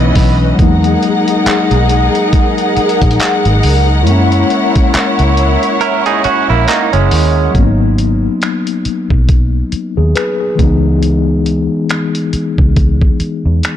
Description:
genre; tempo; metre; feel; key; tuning
contemporary R&B; 69 BPM; 4/4; swing 58% on 16ths; G# minor; A4 = 439 Hz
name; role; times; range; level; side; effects
mellow tine electric piano; accompaniment; 0.0-13.8 s; E3 to B4; -16 LUFS; left 4 dB; medium stereo tremolo
rich studio string section; sustained chords; 0.0-7.5 s; E3 to F#5; -14 LUFS; left 1 dB; sidechain pumping
direct-recorded clean electric guitar; arpeggios; 0.0-0.4, 5.8-7.5 s; G#3 to A#4; -16 LUFS; right 10 dB; spring reverb, ping-pong delay
vintage muted fingered electric bass; bass; 0.0-13.6 s; F#1 to F#2; -12 LUFS; equal; none
dusty soul sampler-style drum kit; drums; 0.2-13.8 s; finger snaps, handclaps, hi-hat, kick drum; -15 LUFS; equal; none
room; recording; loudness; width
digital ambience; blown-out, overdriven recording, overdrive; -10 LUFS; side -10 dB against mid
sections
0.0-7.5 A section; 7.5-13.8 B section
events
kick muted 5.8-7.5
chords
0.0 C#m9; 0.6 Emaj9#11 (rootless); 4.1 F#7; 7.5 G#m7; 10.6 C#m9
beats
| 0.59 1.46 2.33 3.20 | 4.07 4.94 5.81 6.68 | 7.55 8.42 9.29 10.15 | 11.03 11.89 12.76 13.63

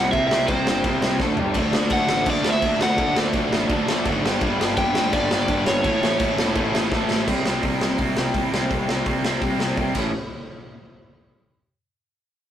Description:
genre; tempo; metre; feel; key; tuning
punk rock; 168 BPM; 4/4; straight; unclear; A4 = 440 Hz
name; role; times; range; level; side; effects
overdriven semi-hollow guitar; melody; 0.0-6.9 s; C5 to G5; -23 LUFS; equal; none
distorted electric guitar; riff; 0.0-10.1 s; A2 to D5; -28 LUFS; left 5 dB; distortion
distorted electric guitar; riff; 0.0-10.1 s; G2 to D4; -25 LUFS; right 4 dB; distortion
fuzz picked electric bass; bass; 0.0-10.1 s; E1 to D2; -28 LUFS; equal; overdrive
raw garage drum kit; drums; 0.1-10.0 s; crash cymbal, hi-hat, kick drum, snare drum, toms; -24 LUFS; left 1 dB; none
high-gain distorted guitar; riff; 1.5-7.3 s; G2 to D4; -30 LUFS; right 1 dB; distortion
room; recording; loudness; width
light reverb; rough rehearsal-room recording, tube saturation; -19 LUFS; side -10 dB against mid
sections
0.0-7.3 A section; 7.3-10.1 B section; 10.1-11.6 C section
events
drum fill 1.2-1.6, 6.9-7.3, 10.0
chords
0.0 C; 1.2 D5; 1.4 G5; 1.6 D; 4.2 G; 5.8 A; 7.3 C; 10.0 A; 10.1 N.C.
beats
| 0.12 0.48 0.84 1.20 | 1.55 1.91 2.27 2.63 | 2.98 3.34 3.70 4.06 | 4.41 4.77 5.13 5.48 | 5.84 6.20 6.55 6.91 | 7.27 7.63 7.98 8.34 | 8.70 9.06 9.41 9.77

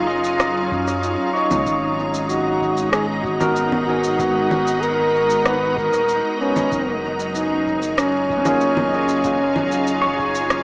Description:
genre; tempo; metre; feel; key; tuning
ambient dub; 95 BPM; 4/4; straight; G# dorian; A4 = 442 Hz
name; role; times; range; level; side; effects
mellow trombone; melody; 0.0-10.6 s; C#4 to B4; -20 LUFS; equal; tape echo
soft additive organ-like pad; sustained chords; 0.0-10.6 s; F#3 to A#5; -24 LUFS; equal; ensemble chorus, built-in reverb
pedal steel guitar; arpeggios; 0.0-4.3, 8.4-10.6 s; C#4 to G#5; -25 LUFS; equal; tape echo
warm sub bass; bass; 0.0-10.6 s; D#1 to F#2; -30 LUFS; equal; none
wind-like tuned noise texture; texture; 0.0-10.6 s; D#4 to D#5; -29 LUFS; equal; built-in reverb
electronic shaker, rim click and congas; drums; 0.2-10.6 s; none; -26 LUFS; equal; dub echo
electronic kick drum; drums; 0.7-10.3 s; none; -35 LUFS; equal; none
overdriven tine electric piano; stabs; 3.4-4.3, 8.5-9.4 s; A#3 to A#4; -28 LUFS; equal; lush chorus, dub echo
room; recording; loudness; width
wet echo chamber reverb, RT60 1.6 s; vinyl crackle, small speaker sound; -17 LUFS; side -30 dB against mid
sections
0.0-10.6 A section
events
none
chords
0.0 F#maj7; 1.7 G#m7; 6.7 F#maj7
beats
0.40 1.03 | 1.67 2.30 2.93 3.56 | 4.19 4.82 5.46 6.09 | 6.72 7.35 7.98 8.61 | 9.24 9.88 10.51

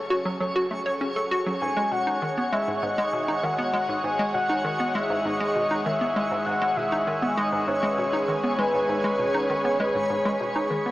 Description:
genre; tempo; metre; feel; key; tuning
ambient, sequencer-driven space music; 99 BPM; 4/4; straight; unclear; A4 = 439 Hz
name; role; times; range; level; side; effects
phased analog pad; sustained chords; 0.0-10.9 s; F#3 to G#5; -29 LUFS; equal; phaser, chorus
warm sub bass; bass; 0.0-10.9 s; F#1 to G#1; -46 LUFS; equal; none
twinkling granular texture; texture; 0.0-10.9 s; C#5; -33 LUFS; equal; built-in reverb
hollow square pluck; riff; 0.1-10.9 s; G#2 to C#5; -28 LUFS; equal; chorus, tape echo
soft octave-layered synth lead; melody; 1.6-10.7 s; B4 to G#5; -25 LUFS; equal; chorus, phaser, tape echo
room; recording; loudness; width
wet shimmer reverb, RT60 8.8 s; small speaker sound; -22 LUFS; side -16 dB against mid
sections
0.0-10.9 A section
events
fade-in on analog synth pad 0.0-10.9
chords
0.0 F#madd9; 1.6 G#7sus4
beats
0.41 1.01 | 1.62 2.22 2.83 3.44 | 4.04 4.65 5.25 5.86 | 6.46 7.07 7.68 8.28 | 8.89 9.49 10.10 10.71

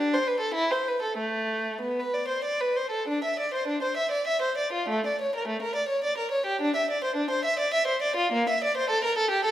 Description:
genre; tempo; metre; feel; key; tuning
classical, baroque-style suite movement for unaccompanied violin; 92-109 BPM; 3/4; rubato; A minor; A4 = 441 Hz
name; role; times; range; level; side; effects
warm violin; solo; 0.0-9.5 s; A3 to E5; -24 LUFS; equal; none
room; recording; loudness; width
wet recital hall reverb, RT60 1.5 s; none; -24 LUFS; side -12 dB against mid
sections
0.0-3.1 A section; 3.1-9.5 A section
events
none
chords
none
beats
0.56 | 1.19 1.83 2.45 | 3.08 3.67 4.26 | 4.88 5.47 6.04 | 6.61 7.17 7.72 | 8.31 8.89 9.45

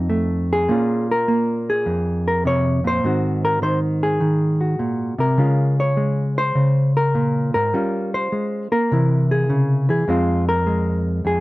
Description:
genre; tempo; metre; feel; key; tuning
solo jazz; 102 BPM; 4/4; swing 67% on 8ths; F minor; A4 = 440 Hz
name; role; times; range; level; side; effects
hollow-body jazz guitar; solo; 0.0-11.4 s; F2 to Db5; -17 LUFS; equal; none
room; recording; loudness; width
little or no reverb; close, detailed microphones; -17 LUFS; side -19 dB against mid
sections
0.0-11.4 A section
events
none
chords
0.0 F7; 0.7 Bbm9; 3.0 Ab7; 5.4 Db6; 7.7 Gm7b5; 8.9 C7; 10.1 Fm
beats
0.10 | 0.69 1.27 1.86 2.44 | 3.03 3.62 4.20 4.79 | 5.38 5.96 6.55 7.14 | 7.72 8.31 8.90 9.48 | 10.07 10.66 11.24

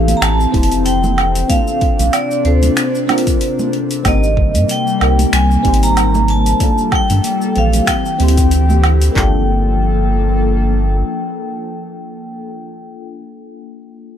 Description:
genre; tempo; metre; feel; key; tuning
sunset chillout; 94 BPM; 4/4; swing 56% on 16ths; G dorian; A4 = 435 Hz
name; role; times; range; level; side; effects
vibraphone with medium hard mallets; melody; 0.0-13.0 s; C5 to Bb5; -20 LUFS; right 1 dB; tape echo
mellow FM electric piano; accompaniment; 0.0-14.2 s; E3 to C5; -22 LUFS; moving between left 6 dB and right 1 dB; chorus, tremolo, phaser, auto-pan
airy breathy pad; sustained chords; 0.0-12.5 s; C3 to A4; -21 LUFS; left 2 dB; chorus
warm sub bass; bass; 0.0-11.0 s; F1 to Ab2; -14 LUFS; equal; none
deep house drum kit; drums; 0.1-9.1 s; cabasa, finger snaps, hi-hat, woodblock; -20 LUFS; right 1 dB; none
congas; percussion; 0.1-8.8 s; none; -25 LUFS; right 5 dB; none
deep house drum kit; drums; 0.5-9.3 s; handclaps, kick drum, toms; -16 LUFS; equal; none
room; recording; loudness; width
light reverb; none; -12 LUFS; side -9 dB against mid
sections
0.0-9.2 A section; 9.2-11.7 B section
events
none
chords
0.0 Fmaj7; 1.5 Bbmaj9; 4.1 Abmaj9; 6.6 Gm9; 7.9 D9sus4; 9.2 Gm9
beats
0.22 0.86 | 1.50 2.14 2.78 3.41 | 4.05 4.69 5.33 5.97 | 6.61 7.24 7.88 8.52 | 9.16 9.80 10.44 11.07

